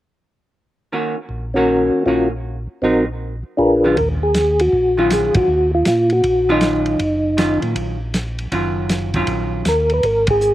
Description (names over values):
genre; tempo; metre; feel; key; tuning
soul jazz organ trio; 158 BPM; 4/4; swing 65% on 8ths; Eb dorian, Eb minor from 4.0 s; A4 = 436 Hz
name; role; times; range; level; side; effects
vintage hollow-body jazz guitar; accompaniment; 0.9-9.6 s; Eb3 to Gb4; -22 LUFS; right 1 dB; slapback echo
mellow tonewheel organ; bass; 1.3-10.5 s; Gb1 to Bb2; -23 LUFS; equal; slow rotary speaker
percussive tonewheel organ; melody; 1.5-10.5 s; C4 to Cb5; -15 LUFS; equal; chorus vibrato, slow rotary speaker
warm soul drum kit; drums; 4.0-10.5 s; hi-hat, kick drum, ride cymbal, snare drum; -22 LUFS; equal; none
room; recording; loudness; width
little or no reverb; recorded outdoors, with no room sound; -15 LUFS; side -14 dB against mid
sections
0.9-4.0 A section; 4.0-10.5 B section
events
band accent 5.3, 10.2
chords
0.9 Ebm7; 2.4 Ebm6/Bb; 3.2 Bb7b9; 4.0 Ebm9; 10.0 Absus2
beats
| 0.92 1.30 1.68 2.06 | 2.44 2.82 3.21 3.59 | 3.97 4.35 4.73 5.11 | 5.49 5.86 6.24 6.62 | 7.00 7.38 7.76 8.14 | 8.52 8.90 9.28 9.65 | 10.03 10.41